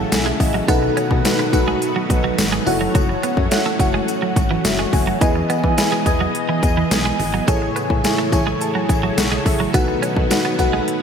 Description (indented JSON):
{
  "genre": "1980s-style pop",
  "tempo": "106 BPM",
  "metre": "4/4",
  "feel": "straight",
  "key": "E major",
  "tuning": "A4 = 440 Hz",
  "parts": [
    { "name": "FM electric piano with soft pad layer", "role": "accompaniment", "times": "0.0-11.0 s", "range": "A2 to A5", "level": "-21 LUFS", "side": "left 1 dB", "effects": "chorus, phaser, shimmer reverb" },
    { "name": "string machine, full ensemble", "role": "sustained chords", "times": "0.0-11.0 s", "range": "C#3 to D#5", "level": "-25 LUFS", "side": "equal", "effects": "ensemble chorus, shimmer reverb" },
    { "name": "twelve-string electric guitar", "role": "riff", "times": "0.0-10.8 s", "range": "E3 to C#4", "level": "-25 LUFS", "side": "right 5 dB", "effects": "wide subtle chorus, ping-pong delay, shimmer reverb" },
    { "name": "mellow synth brass", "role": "stabs", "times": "0.0-11.0 s", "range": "E3 to D#5", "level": "-27 LUFS", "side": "left 1 dB", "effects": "chorus, phaser, shimmer reverb" },
    { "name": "solid FM bass", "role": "bass", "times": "0.0-10.8 s", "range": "F#1 to E3", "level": "-25 LUFS", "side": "equal", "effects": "none" },
    { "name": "pop drum kit", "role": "drums", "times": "0.1-11.0 s", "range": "hi-hat, kick drum, snare drum, tambourine", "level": "-20 LUFS", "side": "equal", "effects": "overdrive, gated reverb" },
    { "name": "tambourine", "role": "percussion", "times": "0.1-10.7 s", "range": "none", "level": "-36 LUFS", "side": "left 8 dB", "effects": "none" }
  ],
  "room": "moderate lush hall reverb, RT60 1.9 s, digital ambience",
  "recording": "bright 1980s-style digital production",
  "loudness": "-16 LUFS",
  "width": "side -7 dB against mid",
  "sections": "0.0-11.0 A section",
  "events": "FM electric piano fill 0.0-0.7, 4.4-5.2, 8.0-9.7",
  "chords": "0.0 Amaj7; 0.7 B7; 2.7 F#m7; 5.2 Emaj7; 7.5 Amaj7; 9.7 B7"
}